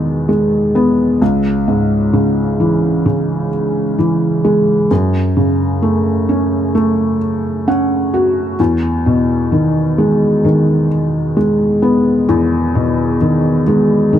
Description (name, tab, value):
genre	pop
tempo	65 BPM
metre	4/4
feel	straight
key	E major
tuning	A4 = 441 Hz
part	felt-muted upright piano	solo	0.0-14.2 s	C#2 to F#5	-12 LUFS	equal	none
room	light reverb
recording	none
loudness	-12 LUFS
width	side -10 dB against mid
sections	0.0-14.2 A section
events	felt piano fill 7.2-8.6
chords	0.0 Emaj7; 1.2 C#m; 4.9 F#m; 8.6 Emaj7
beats	0.28 | 1.21 2.13 3.05 3.98 | 4.90 5.82 6.75 7.67 | 8.59 9.52 10.44 11.36 | 12.28 13.21 14.13